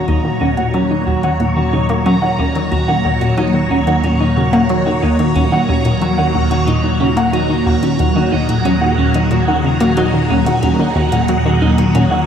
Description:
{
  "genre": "ambient, sequencer-driven space music",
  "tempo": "91 BPM",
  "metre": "4/4",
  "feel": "straight",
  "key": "Eb minor",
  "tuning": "A4 = 440 Hz",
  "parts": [
    { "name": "phased string machine", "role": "sustained chords", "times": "0.0-12.3 s", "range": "Eb2 to Db5", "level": "-16 LUFS", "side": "equal", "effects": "ensemble chorus, phaser" },
    { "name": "clean electric guitar", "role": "arpeggios", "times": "0.0-12.2 s", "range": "Db4 to Gb5", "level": "-19 LUFS", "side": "right 1 dB", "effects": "auto-pan, low-pass filter, ping-pong delay, shimmer reverb" },
    { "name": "analog pluck", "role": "riff", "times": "0.0-12.2 s", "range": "Eb2 to Bb3", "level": "-17 LUFS", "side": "left 1 dB", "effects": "chorus, ping-pong delay" },
    { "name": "bubbling stepped-filter texture", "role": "texture", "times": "0.0-12.3 s", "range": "Bb5", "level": "-26 LUFS", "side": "right 2 dB", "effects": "chorus, built-in reverb, shimmer reverb" },
    { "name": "electronic hi-hat and congas", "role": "percussion", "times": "0.1-12.1 s", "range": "none", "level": "-32 LUFS", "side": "left 5 dB", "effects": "ping-pong delay" }
  ],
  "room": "wet spring reverb, RT60 2.6 s",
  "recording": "echo-heavy mix",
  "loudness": "-12 LUFS",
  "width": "side -8 dB against mid",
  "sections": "0.0-12.3 A section",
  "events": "fade-in on drum 0.0-12.3",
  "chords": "0.0 Ebm7"
}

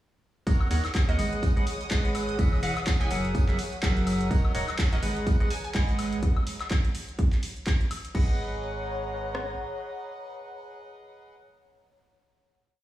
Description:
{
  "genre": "piano house",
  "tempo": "125 BPM",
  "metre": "4/4",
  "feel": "swing 58% on 16ths",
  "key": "G# minor",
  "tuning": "A4 = 440 Hz",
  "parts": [
    { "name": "analog string pad", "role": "sustained chords", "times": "0.5-6.2 s", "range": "D#6", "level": "-43 LUFS", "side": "equal", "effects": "ensemble chorus, phaser, sidechain pumping" },
    { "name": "percussive organ stab", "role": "riff", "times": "0.5-11.4 s", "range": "E3 to F#5", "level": "-32 LUFS", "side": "equal", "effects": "wide subtle chorus, cassette tape, sidechain pumping, digital delay" },
    { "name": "organ-like FM bass", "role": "bass", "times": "0.5-9.5 s", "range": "D#1 to D#2", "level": "-31 LUFS", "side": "equal", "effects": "sidechain pumping" },
    { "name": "house drum kit", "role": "drums", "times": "0.5-9.5 s", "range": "kick drum, rim click", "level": "-24 LUFS", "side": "equal", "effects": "overdrive" },
    { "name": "open jazz drum kit", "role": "drums", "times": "0.5-6.1 s", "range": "hi-hat, snare drum, tambourine", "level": "-46 LUFS", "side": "right 1 dB", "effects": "none" },
    { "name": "punchy analog drum machine", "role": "drums", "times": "0.5-8.3 s", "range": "crash cymbal, handclaps, hi-hat, woodblock", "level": "-35 LUFS", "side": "left 1 dB", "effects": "none" },
    { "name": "airy breathy pad", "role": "texture", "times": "0.7-11.5 s", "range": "G#4 to A#5", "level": "-39 LUFS", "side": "left 2 dB", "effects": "chorus, sidechain pumping" },
    { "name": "glassy wavetable pluck", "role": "melody", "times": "1.1-5.7 s", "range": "D#5 to G#5", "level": "-39 LUFS", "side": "right 1 dB", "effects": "chorus, digital delay" }
  ],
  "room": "light reverb",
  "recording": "played on a big sound system in a bare room, stone room reverb",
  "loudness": "-24 LUFS",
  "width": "side -14 dB against mid",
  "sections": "0.5-8.1 drop; 8.1-12.0 final chord",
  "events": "drop 0.5-8.1",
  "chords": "0.5 D#m7; 1.2 G#m7; 2.4 Emaj9; 3.3 F#9; 4.3 D#m7; 5.0 G#m7; 6.2 N.C.; 8.1 G#m7"
}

